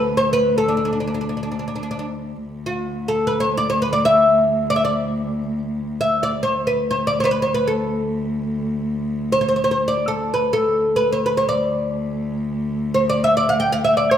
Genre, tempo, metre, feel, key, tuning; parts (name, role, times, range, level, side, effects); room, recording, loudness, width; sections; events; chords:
Arabic maqam ensemble; free time; D maqam rast; A4 = 439 Hz
oud; melody; 0.0-14.2 s; D4 to G5; -18 LUFS; equal
warm cello; drone; 0.0-14.2 s; D2; -25 LUFS; left 1 dB
wet recital hall reverb, RT60 1.5 s; -18 LUFS; side -9 dB against mid
0.0-2.4 A section; 2.4-14.2 A section